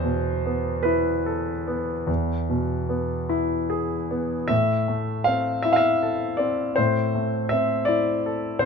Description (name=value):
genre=classical, romantic nocturne for solo piano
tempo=47-56 BPM (dotted quarters)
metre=12/8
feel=rubato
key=A minor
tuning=A4 = 440 Hz
part: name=clear concert grand piano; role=solo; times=0.0-8.7 s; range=E2 to F5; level=-21 LUFS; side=equal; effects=none
room=light reverb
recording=close, detailed microphones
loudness=-21 LUFS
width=side -5 dB against mid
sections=0.0-8.7 A section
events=none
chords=0.0 Esus4; 2.1 E; 4.5 Am